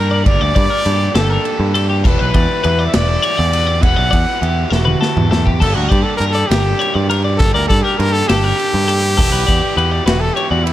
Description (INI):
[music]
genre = math rock and midwest emo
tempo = 67 BPM (dotted quarters)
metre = 6/8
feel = straight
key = unclear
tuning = A4 = 440 Hz
[part]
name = clear trumpet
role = melody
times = 0.0-10.7 s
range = E4 to F#5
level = -19 LUFS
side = left 1 dB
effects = slapback echo, plate reverb
[part]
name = twelve-string electric guitar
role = arpeggios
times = 0.0-10.7 s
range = G4 to D5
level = -21 LUFS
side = left 5 dB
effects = plate reverb
[part]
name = biting overdriven guitar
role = riff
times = 0.0-10.7 s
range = E3 to G4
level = -23 LUFS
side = right 2 dB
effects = none
[part]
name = picked electric bass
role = bass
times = 0.0-10.7 s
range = E1 to G2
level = -17 LUFS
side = equal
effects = none
[part]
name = modern studio drum kit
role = drums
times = 0.3-10.7 s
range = crash cymbal, kick drum, ride cymbal, snare drum, toms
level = -18 LUFS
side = equal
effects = none
[sound]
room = light reverb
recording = none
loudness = -12 LUFS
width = side -13 dB against mid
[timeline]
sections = 0.0-10.7 A section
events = drum fill 4.7-5.6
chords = 0.0 Gmadd9; 2.0 Em9; 5.6 Gmadd9; 9.2 Em7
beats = | 0.25 1.14 | 2.04 2.93 | 3.83 4.72 | 5.61 6.50 | 7.39 8.29 | 9.18 10.07